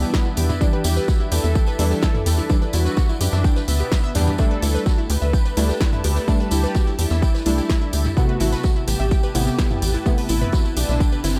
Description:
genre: melodic techno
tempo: 127 BPM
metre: 4/4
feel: straight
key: E minor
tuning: A4 = 440 Hz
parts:
  - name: mellow synth brass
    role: melody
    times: 0.0-11.4 s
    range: B3 to B4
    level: -31 LUFS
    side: equal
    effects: chorus, sidechain pumping, analog delay
  - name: evolving wavetable pad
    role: sustained chords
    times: 0.0-11.4 s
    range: E4 to A5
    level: -37 LUFS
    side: equal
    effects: phaser, built-in reverb, sidechain pumping
  - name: unison pluck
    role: arpeggios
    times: 0.0-11.4 s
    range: E4 to G5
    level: -32 LUFS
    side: equal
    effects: sidechain pumping, tape echo
  - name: synth brass stab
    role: stabs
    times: 0.0-11.2 s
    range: C3 to D4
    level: -30 LUFS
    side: equal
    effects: chorus, cassette tape, sidechain pumping, tape echo
  - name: tight sequencer bass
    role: bass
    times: 0.0-11.4 s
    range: G1 to F#2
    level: -22 LUFS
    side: equal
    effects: sidechain pumping
  - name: tambourine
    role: percussion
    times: 0.0-11.4 s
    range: none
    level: -35 LUFS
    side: equal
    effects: tape echo
  - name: electronic kick drum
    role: drums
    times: 0.1-11.1 s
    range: none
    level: -21 LUFS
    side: equal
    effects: none
  - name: punchy analog drum machine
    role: drums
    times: 0.1-11.3 s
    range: hi-hat, snare drum, toms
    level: -31 LUFS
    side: equal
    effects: tape echo
  - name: vintage drum kit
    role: drums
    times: 0.1-11.4 s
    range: hi-hat, snare drum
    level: -43 LUFS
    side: equal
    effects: none
  - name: reverse cymbal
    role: sound effects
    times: 11.2-11.4 s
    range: none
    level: -45 LUFS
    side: equal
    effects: none
room: digital ambience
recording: echo-heavy mix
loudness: -20 LUFS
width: mono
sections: 0.0-11.4 A section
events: none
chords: 0.0 Em7; 4.4 Dsus4; 8.2 Amadd9

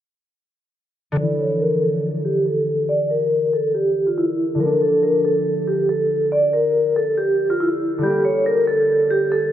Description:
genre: hip hop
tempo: 140 BPM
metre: 4/4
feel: half-time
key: D minor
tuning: A4 = 440 Hz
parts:
  - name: concert harp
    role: accompaniment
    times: 1.1-9.5 s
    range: D3 to G4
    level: -23 LUFS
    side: equal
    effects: low-pass filter
  - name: vibraphone with medium hard mallets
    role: melody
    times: 1.2-9.5 s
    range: E4 to D5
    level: -18 LUFS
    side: equal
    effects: low-pass filter
room: moderate huge ambient reverb, RT60 6.5 s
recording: none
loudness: -17 LUFS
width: side -11 dB against mid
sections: 1.2-9.5 A section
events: filter sweep 1.2-9.5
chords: 1.2 Dmadd9; 4.6 Bb; 8.0 Gm

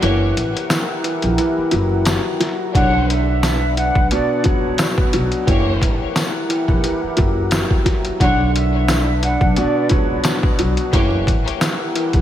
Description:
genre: hip hop, boom-bap hip-hop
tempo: 88 BPM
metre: 4/4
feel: swing 55% on 16ths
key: B harmonic minor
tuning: A4 = 441 Hz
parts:
  - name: clear upright piano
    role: accompaniment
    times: 0.0-12.2 s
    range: B2 to D4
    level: -22 LUFS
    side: right 1 dB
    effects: cassette tape, high-pass filter, low-pass filter
  - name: dark analog pad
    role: sustained chords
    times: 0.0-12.2 s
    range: D4 to F#5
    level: -25 LUFS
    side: left 2 dB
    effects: chorus, high-pass filter, low-pass filter
  - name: rich studio string section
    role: stabs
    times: 0.0-11.2 s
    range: F#3 to C#5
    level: -27 LUFS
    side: left 2 dB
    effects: high-pass filter, low-pass filter, ping-pong delay
  - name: upright bass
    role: bass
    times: 0.0-12.2 s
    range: F#1 to C#2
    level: -20 LUFS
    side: equal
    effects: none
  - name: trip hop sampler-style drum kit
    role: drums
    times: 0.0-12.2 s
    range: hi-hat, kick drum, snare drum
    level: -19 LUFS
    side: equal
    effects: none
  - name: tambourine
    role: percussion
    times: 0.7-11.8 s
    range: none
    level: -36 LUFS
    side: left 5 dB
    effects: none
  - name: mellow concert flute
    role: melody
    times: 2.7-10.4 s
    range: C#5 to F#5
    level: -22 LUFS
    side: right 1 dB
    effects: high-pass filter, low-pass filter, ping-pong delay
room: light reverb, studio reverb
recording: vinyl crackle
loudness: -15 LUFS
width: side -11 dB against mid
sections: 0.0-2.7 A section; 2.7-12.2 B section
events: break 0.0-2.7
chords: 0.0 F#7b9; 2.7 Bmadd9; 5.5 F#7b9; 8.2 Bmadd9; 10.9 F#7b9

